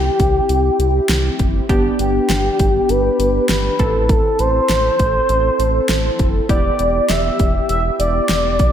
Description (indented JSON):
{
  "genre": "synth-pop",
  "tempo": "100 BPM",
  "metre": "4/4",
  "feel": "straight",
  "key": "unclear",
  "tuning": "A4 = 440 Hz",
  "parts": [
    { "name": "expressive synth lead", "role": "melody", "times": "0.0-8.7 s", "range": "G4 to E5", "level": "-18 LUFS", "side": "equal", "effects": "chorus, analog delay" },
    { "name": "funky polysynth comp", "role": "accompaniment", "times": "0.0-8.7 s", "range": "B3 to A4", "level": "-22 LUFS", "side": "equal", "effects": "chorus" },
    { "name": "round analog bass", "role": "bass", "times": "0.0-8.7 s", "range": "E1 to C2", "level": "-20 LUFS", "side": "equal", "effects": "none" },
    { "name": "pop drum kit", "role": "drums", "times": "0.2-8.7 s", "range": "hi-hat, kick drum, snare drum", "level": "-19 LUFS", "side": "equal", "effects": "none" }
  ],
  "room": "moderate lush hall reverb, RT60 1.8 s",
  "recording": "dreamy mix soaked in reverb",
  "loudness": "-14 LUFS",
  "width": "side -9 dB against mid",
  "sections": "0.0-8.7 A section",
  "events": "none",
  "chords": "0.0 C; 1.7 G; 3.8 Am; 6.5 Em7"
}